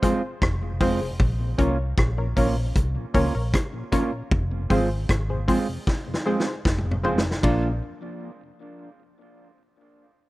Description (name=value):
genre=roots reggae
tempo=77 BPM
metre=4/4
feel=straight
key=Bb minor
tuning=A4 = 439 Hz
part: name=mellow electric guitar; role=accompaniment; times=0.0-7.7 s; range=Ab3 to F4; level=-29 LUFS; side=right 4 dB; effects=tape echo
part: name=mellow tonewheel organ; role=accompaniment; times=0.0-7.7 s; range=F2 to D4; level=-33 LUFS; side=left 1 dB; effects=slow rotary speaker, tape echo
part: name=filtered dub chord stab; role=stabs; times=0.0-7.7 s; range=C4 to D5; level=-28 LUFS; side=left 2 dB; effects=chorus
part: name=vintage drum kit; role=drums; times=0.0-7.6 s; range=hi-hat, kick drum, ride cymbal, rim click, snare drum, toms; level=-24 LUFS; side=equal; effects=none
part: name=vintage muted fingered electric bass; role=bass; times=0.4-7.8 s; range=F1 to Db2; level=-26 LUFS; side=equal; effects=none
room=studio reverb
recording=rough home demo mix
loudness=-21 LUFS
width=side -18 dB against mid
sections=0.0-1.2 A section; 1.2-7.4 B section; 7.4-10.3 C section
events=drum fill 5.9-7.4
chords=0.0 Fm; 1.2 Bbm; 4.3 Fm; 7.4 Bb